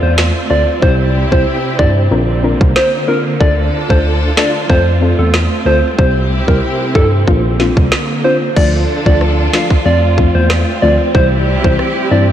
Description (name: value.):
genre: dancehall.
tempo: 93 BPM.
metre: 4/4.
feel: straight.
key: D minor.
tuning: A4 = 439 Hz.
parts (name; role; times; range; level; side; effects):
soft struck synth lead; melody; 0.0-12.2 s; A4 to F5; -17 LUFS; right 1 dB; chorus, tape echo.
soft round pluck; accompaniment; 0.0-12.3 s; E3 to C5; -19 LUFS; left 3 dB; chorus.
dark studio string section; sustained chords; 0.0-12.3 s; C3 to A4; -19 LUFS; right 2 dB; none.
bell-like tine electric piano; bass; 0.0-12.3 s; Bb1 to G2; -14 LUFS; equal; fast stereo tremolo.
island pop drum kit; drums; 0.2-12.0 s; crash cymbal, kick drum, rim click, snare drum; -16 LUFS; equal; vintage 12-bit sampler grit.
room: moderate cathedral reverb, RT60 5.2 s.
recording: dreamy mix soaked in reverb.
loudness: -10 LUFS.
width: side -10 dB against mid.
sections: 0.0-8.6 A section; 8.6-12.3 B section.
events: none.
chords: 0.0 F; 0.8 C; 2.1 Bbadd9; 3.4 Dm; 4.7 F; 6.0 C; 7.3 Bbadd9; 8.6 Dm; 9.9 F; 11.1 C.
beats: 0.18 | 0.82 1.47 2.11 2.76 | 3.40 4.05 4.70 5.34 | 5.99 6.63 7.28 7.92 | 8.57 9.21 9.86 10.50 | 11.15 11.79.